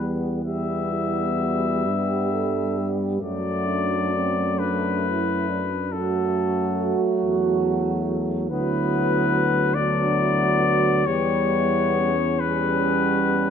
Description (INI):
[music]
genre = classical, hymn-like piece for brass band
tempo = 38-48 BPM (dotted quarters)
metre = 12/8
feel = rubato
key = B minor from 8.5 s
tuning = A4 = 440 Hz
[part]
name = clear flugelhorn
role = melody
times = 0.0-13.5 s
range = A4 to E5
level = -24 LUFS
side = left 7 dB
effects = none
[part]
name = clear euphonium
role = accompaniment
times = 0.0-13.5 s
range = F#3 to G3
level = -28 LUFS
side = right 4 dB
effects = none
[part]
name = mellow trombone section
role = accompaniment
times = 0.0-13.5 s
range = A3 to B3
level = -29 LUFS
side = left 4 dB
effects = none
[part]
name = mellow tuba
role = bass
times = 0.0-13.5 s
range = D2 to G2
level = -27 LUFS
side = equal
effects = none
[part]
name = dark French horn section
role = second line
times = 0.4-13.5 s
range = C4 to A4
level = -28 LUFS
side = right 8 dB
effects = none
[sound]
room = light reverb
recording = close, detailed microphones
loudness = -20 LUFS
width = side -7 dB against mid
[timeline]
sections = 0.0-13.5 A section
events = none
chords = 0.0 Em; 3.2 D/F#; 8.5 Bm/D; 11.1 C#m7b5/E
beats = 0.45 1.86 | 3.22 4.59 5.93 7.23 | 8.51 9.77 11.07 12.41